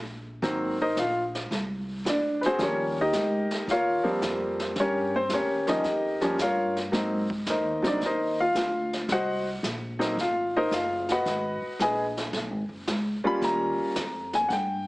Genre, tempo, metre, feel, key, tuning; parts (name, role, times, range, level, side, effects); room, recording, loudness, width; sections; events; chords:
jazz piano trio; 111 BPM; 4/4; swing 69% on 8ths; A4 = 442 Hz
upright bass; bass; 0.0-14.9 s; Gb1 to Ab2; -34 LUFS; equal
warm concert grand piano; melody; 0.4-14.9 s; Eb3 to Cb6; -25 LUFS; equal; plate reverb
jazz brush drum kit; drums; 0.4-14.9 s; brushed snare drum, hi-hat, kick drum, snare drum; -34 LUFS; equal
moderate studio reverb, RT60 0.8 s; heavily compressed radio sound, multiband compression, small speaker sound; -24 LUFS; side -20 dB against mid
0.0-14.9 A section
grand piano solo 0.0-14.9
0.4 Ab9; 2.6 Eb9; 6.9 Ab9; 11.3 Abm7; 13.4 Eb9